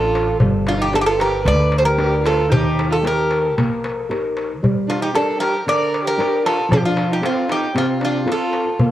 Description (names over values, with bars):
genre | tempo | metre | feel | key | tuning
greek folk, Greek bouzouki band | 114 BPM | 4/4 | straight | unclear | A4 = 441 Hz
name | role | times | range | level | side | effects
Greek bouzouki | melody | 0.0-8.8 s | F4 to D5 | -20 LUFS | equal | analog delay
dark violin | second line | 0.0-8.8 s | C4 to B4 | -24 LUFS | right 2 dB | none
nylon-string guitar | accompaniment | 0.0-8.9 s | C3 to B4 | -22 LUFS | left 1 dB | none
upright bass | bass | 0.0-8.9 s | G1 to G2 | -22 LUFS | equal | none
darbuka | percussion | 0.2-8.9 s | none | -24 LUFS | left 1 dB | none
room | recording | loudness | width
moderate spring reverb, RT60 1.7 s, small room ambience | worn, warbling old tape, cassette tape, warbly pitch drift | -16 LUFS | side -13 dB against mid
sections
0.0-8.9 A section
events
none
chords
0.4 G; 2.5 Eb; 4.6 Gm; 6.7 F